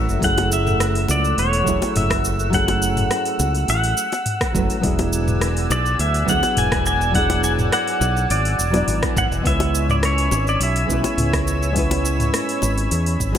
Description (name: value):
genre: sunset chillout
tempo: 104 BPM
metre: 4/4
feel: straight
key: F# minor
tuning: A4 = 442 Hz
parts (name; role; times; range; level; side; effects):
- pedal steel guitar; melody; 0.0-13.4 s; C#5 to G#5; -22 LUFS; equal; wide subtle chorus, digital delay
- nylon-string guitar; accompaniment; 0.0-13.4 s; F#3 to D5; -24 LUFS; right 1 dB; auto-pan, digital delay
- lush unison pad; sustained chords; 0.0-13.4 s; A3 to E6; -28 LUFS; right 1 dB; chorus
- fingered electric bass; bass; 0.0-13.3 s; E1 to E2; -22 LUFS; equal; none
- smooth R&B drum kit; drums; 0.1-13.4 s; cabasa, hi-hat, rim click, toms; -26 LUFS; right 1 dB; none
- electronic kick drum; drums; 0.2-13.3 s; none; -25 LUFS; equal; overdrive
- bongos; percussion; 0.4-13.4 s; none; -30 LUFS; left 6 dB; none
room: moderate plate reverb, RT60 2.1 s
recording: bright 1980s-style digital production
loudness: -17 LUFS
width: side -9 dB against mid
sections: 0.0-13.4 A section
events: none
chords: 0.0 F#m9; 4.8 E9; 9.5 C#m7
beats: | 0.22 0.80 1.38 1.95 | 2.53 3.11 3.69 4.26 | 4.84 5.42 5.99 6.57 | 7.15 7.72 8.30 8.88 | 9.45 10.03 10.61 11.19 | 11.76 12.34 12.91